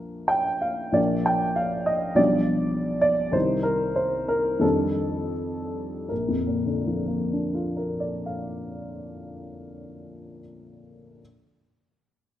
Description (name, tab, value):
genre	classical, romantic character piece for solo piano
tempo	74-105 BPM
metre	4/4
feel	rubato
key	Bb major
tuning	A4 = 438 Hz
part	dark upright piano	solo	0.0-11.2 s	Bb1 to G5	-23 LUFS	equal	none
room	moderate recital hall reverb, RT60 1.4 s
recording	none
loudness	-22 LUFS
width	side -12 dB against mid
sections	1.0-6.1 A section; 6.1-8.9 B section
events	slowing down 0.0-6.1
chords	0.0 Bb; 2.2 G7/B; 3.3 Cm; 4.6 F13; 6.1 Bb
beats	0.31 | 0.97 1.58 2.18 2.76 | 3.34 3.97 4.62 5.33 | 6.10 6.79 7.51 8.23